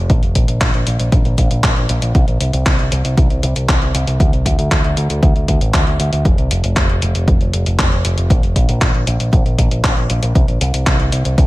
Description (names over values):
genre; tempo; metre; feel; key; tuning
italo disco; 117 BPM; 4/4; straight; unclear; A4 = 437 Hz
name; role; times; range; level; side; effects
picked electric bass with an envelope filter; bass; 0.0-11.5 s; F1 to D2; -16 LUFS; equal; none
clean 12-bit digital drum machine; drums; 0.1-11.5 s; handclaps, hi-hat; -21 LUFS; equal; gated reverb
electronic kick drum; drums; 0.1-11.5 s; none; -14 LUFS; equal; none
room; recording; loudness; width
little or no reverb; none; -13 LUFS; side -18 dB against mid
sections
0.0-11.5 A section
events
none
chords
none